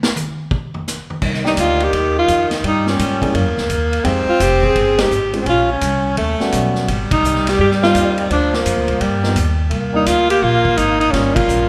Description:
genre	jazz, small-group swing and bop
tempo	170 BPM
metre	4/4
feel	swing 65% on 8ths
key	C minor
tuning	A4 = 440 Hz
part	vintage drum kit	drums	0.0-11.6 s	crash cymbal, hi-hat, kick drum, ride cymbal, snare drum, toms	-25 LUFS	equal	none
part	breathy tenor saxophone	second line	1.2-11.7 s	Eb3 to Db4	-23 LUFS	equal	none
part	upright bass	bass	1.2-11.7 s	F1 to Ab2	-22 LUFS	equal	none
part	warm grand piano	accompaniment	1.4-11.7 s	F3 to Ab4	-26 LUFS	equal	none
part	clear alto saxophone	melody	1.5-11.7 s	Bb3 to Ab4	-19 LUFS	equal	none
room	wet recital hall reverb, RT60 1.5 s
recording	recorded in a church or concert hall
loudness	-16 LUFS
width	mono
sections	0.0-1.2 A section; 1.2-11.7 B section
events	drum solo 0.0-1.2; band accent 4.9, 7.1, 11.3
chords	0.0 N.C.; 1.2 Cm9; 2.6 Gm7b5; 3.3 F#7; 4.0 Fm9; 5.5 Bbmadd9; 6.2 Eb7alt; 6.9 Abmaj9; 8.3 C9sus4; 9.0 G7alt; 9.7 Cm9; 11.1 Gm7b5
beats	0.15 0.51 0.86 | 1.22 1.57 1.92 2.28 | 2.63 2.99 3.34 3.69 | 4.05 4.40 4.76 5.11 | 5.47 5.82 6.17 6.53 | 6.88 7.24 7.59 7.94 | 8.30 8.65 9.01 9.36 | 9.71 10.07 10.42 10.77 | 11.13 11.48

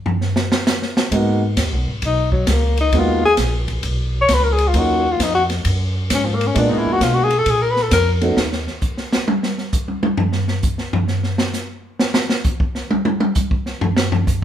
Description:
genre	jazz, small-group swing and bop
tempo	132 BPM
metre	4/4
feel	swing 66% on 8ths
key	unclear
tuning	A4 = 442 Hz
part	open jazz drum kit	drums	0.1-14.4 s	hi-hat, kick drum, ride cymbal, snare drum, toms	-19 LUFS	equal	none
part	warm upright piano	accompaniment	1.1-8.4 s	Gb3 to Gb4	-20 LUFS	right 2 dB	none
part	upright bass	bass	1.1-8.7 s	Ab1 to Cb3	-19 LUFS	equal	none
part	breathy tenor saxophone	melody	2.1-8.1 s	F3 to Db5	-18 LUFS	left 3 dB	none
room	moderate large studio reverb, RT60 1.1 s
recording	band playing live in one room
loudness	-16 LUFS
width	side -10 dB against mid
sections	0.0-14.4 A section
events	tenor saxophone solo 0.0-14.4; drum solo 0.0-1.1, 8.4-14.4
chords	0.0 N.C.; 1.1 Abm7; 4.8 Ebm7; 6.6 Bb7b9; 8.4 N.C.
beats	0.22 0.67 | 1.12 1.58 2.03 2.48 | 2.94 3.39 3.84 4.30 | 4.75 5.20 5.66 6.11 | 6.56 7.02 7.47 7.92 | 8.38 8.83 9.29 9.74 | 10.19 10.65 11.10 11.56 | 12.01 12.46 12.92 13.37 | 13.83 14.28

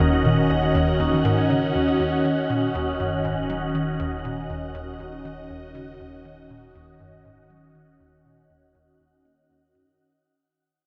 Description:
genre	ambient, sequencer-driven space music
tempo	120 BPM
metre	4/4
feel	straight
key	Eb minor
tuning	A4 = 441 Hz
part	phased analog pad	sustained chords	0.0-10.0 s	Eb3 to Eb5	-26 LUFS	equal	phaser, chorus
part	concert harp	arpeggios	0.0-5.0 s	Eb3 to Eb5	-29 LUFS	equal	analog delay
part	hollow square pluck	riff	0.0-9.9 s	Eb2 to Bb3	-30 LUFS	equal	chorus, analog delay
part	round analog bass	bass	0.0-10.0 s	Eb1	-42 LUFS	equal	none
part	wind-like tuned noise texture	texture	0.0-10.0 s	Gb5	-36 LUFS	equal	built-in reverb
room	wet spring reverb, RT60 2.4 s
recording	echo-heavy mix, cassette tape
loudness	-23 LUFS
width	mono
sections	0.0-10.0 A section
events	fade-out on synth arpeggio sound 0.0-10.0; fade-out on analog synth bass 0.0-10.0; fade-out 0.0-10.0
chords	0.0 Ebm7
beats	| 0.00 0.50 1.00 1.50 | 2.00 2.50 3.00 3.50 | 4.00 4.50 5.00 5.50 | 6.00 6.50 7.00 7.50 | 8.00 8.50 9.00 9.50

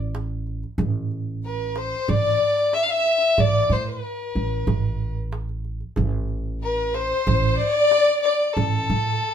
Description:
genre	Arabic maqam ensemble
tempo	93 BPM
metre	4/4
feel	straight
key	A maqam bayati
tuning	A4 = 440 Hz
part	upright bass	bass	0.0-9.2 s	A1 to A2	-25 LUFS	right 1 dB	none
part	darbuka	percussion	0.1-9.3 s	none	-27 LUFS	right 6 dB	none
part	dark violin	melody	1.4-9.3 s	A4 to F5	-22 LUFS	left 3 dB	none
part	dark studio violin section	second line	1.5-9.3 s	A4 to E5	-26 LUFS	equal	none
room	moderate studio reverb, RT60 0.6 s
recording	minimal, uncompressed stereo recording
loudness	-20 LUFS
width	side -8 dB against mid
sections	0.0-9.3 A section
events	none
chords	none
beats	0.15 | 0.80 1.44 2.09 2.74 | 3.38 4.03 4.68 5.33 | 5.97 6.62 7.27 7.92 | 8.57 9.22

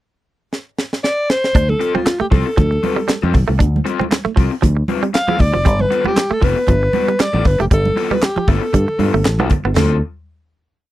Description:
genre	funk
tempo	117 BPM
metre	4/4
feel	swing 56% on 16ths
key	D dorian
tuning	A4 = 442 Hz
part	tight funk drum kit	drums	0.5-9.9 s	crash cymbal, handclaps, hi-hat, kick drum, snare drum, toms	-16 LUFS	equal	none
part	breathy alto saxophone	melody	1.0-10.0 s	F4 to F5	-18 LUFS	equal	none
part	fingered electric bass	bass	1.5-10.0 s	F1 to G2	-17 LUFS	equal	none
part	direct-recorded clean electric guitar	riff	1.6-9.9 s	F3 to D4	-21 LUFS	right 8 dB	none
part	congas	percussion	1.6-10.0 s	none	-24 LUFS	right 3 dB	none
part	raw garage guitar	accompaniment	1.8-9.9 s	B3 to B4	-23 LUFS	left 9 dB	overdrive
room	little or no reverb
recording	dry, close 1970s-style studio recording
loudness	-14 LUFS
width	side -15 dB against mid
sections	0.0-1.6 pickup bar; 1.6-9.8 groove; 9.8-10.9 final chord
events	drum fill 0.5-1.6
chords	0.0 N.C.; 1.6 Dm7; 5.7 G9; 9.8 Dm7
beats	0.01 0.52 1.04 | 1.55 2.06 2.58 3.09 | 3.60 4.12 4.63 5.14 | 5.66 6.17 6.68 7.20 | 7.71 8.22 8.74 9.25 | 9.76

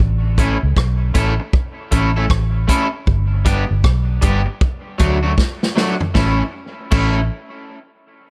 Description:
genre	roots reggae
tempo	78 BPM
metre	4/4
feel	swing 64% on 16ths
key	A mixolydian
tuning	A4 = 440 Hz
part	vintage muted fingered electric bass	bass	0.0-7.3 s	G1 to D2	-20 LUFS	equal	none
part	electric guitar at the edge of break-up	accompaniment	0.4-7.2 s	F#3 to A4	-24 LUFS	equal	subtle chorus, tape echo
part	vintage drum kit	drums	0.4-7.1 s	crash cymbal, hi-hat, kick drum, rim click, snare drum, toms	-19 LUFS	equal	none
room	small room reverb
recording	none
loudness	-17 LUFS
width	mono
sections	0.0-6.2 A section; 6.2-8.3 B section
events	drum fill 5.4-6.2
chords	0.0 A; 3.1 G; 4.6 D; 6.2 A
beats	0.76 1.53 2.30 | 3.07 3.84 4.61 5.38 | 6.15 6.92

